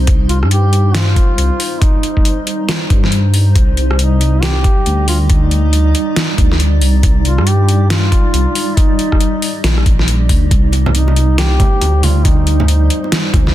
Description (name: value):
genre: deep dubstep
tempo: 138 BPM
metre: 4/4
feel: swing 62% on 16ths, half-time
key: C minor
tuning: A4 = 440 Hz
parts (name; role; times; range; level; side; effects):
- granular cloud pad; sustained chords; 0.0-13.5 s; G3 to D5; -21 LUFS; equal; built-in reverb
- dark detuned saw bass; bass; 0.0-13.5 s; Bb1 to G2; -12 LUFS; equal; none
- dubstep drum kit; drums; 0.1-13.5 s; hi-hat, rim click, snare drum; -19 LUFS; equal; overdrive
- electronic kick drum; drums; 0.1-13.4 s; none; -12 LUFS; equal; none
- dark duduk; melody; 0.3-13.5 s; Eb4 to G4; -21 LUFS; right 1 dB; dub echo
- bongos and congas; percussion; 10.7-13.5 s; none; -22 LUFS; right 3 dB; none
room: digital ambience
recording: dense, heavily limited modern master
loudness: -10 LUFS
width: side -14 dB against mid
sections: 0.0-13.5 A section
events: none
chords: 0.0 Cm